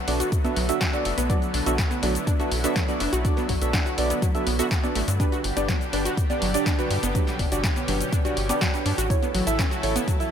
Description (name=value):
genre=progressive house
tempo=123 BPM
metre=4/4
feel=straight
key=B minor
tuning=A4 = 439 Hz
part: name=lush unison pad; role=sustained chords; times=0.0-10.3 s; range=B2 to A4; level=-32 LUFS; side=equal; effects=chorus, sidechain pumping
part: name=wide unison pluck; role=arpeggios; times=0.1-10.1 s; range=F#3 to F#4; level=-29 LUFS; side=equal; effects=cassette tape, sidechain pumping, ping-pong delay
part: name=deep mellow chord stab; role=stabs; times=0.1-10.3 s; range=B3 to E5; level=-28 LUFS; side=right 3 dB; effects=wide subtle chorus, sidechain pumping, ping-pong delay
part: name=tight sequencer bass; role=bass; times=0.1-10.0 s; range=F#1 to G2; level=-27 LUFS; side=equal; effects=sidechain pumping
part: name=deep house drum kit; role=drums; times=0.1-10.3 s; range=cabasa, hi-hat, snare drum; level=-30 LUFS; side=left 2 dB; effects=none
part: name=electronic kick drum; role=drums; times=0.3-10.2 s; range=none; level=-24 LUFS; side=equal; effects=none
room=light reverb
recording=none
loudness=-21 LUFS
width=side -8 dB against mid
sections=0.0-10.3 A section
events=none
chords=0.0 Bm7; 5.2 G; 9.1 A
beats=0.32 0.81 | 1.30 1.78 2.27 2.76 | 3.25 3.73 4.22 4.71 | 5.20 5.69 6.17 6.66 | 7.15 7.64 8.12 8.61 | 9.10 9.59 10.08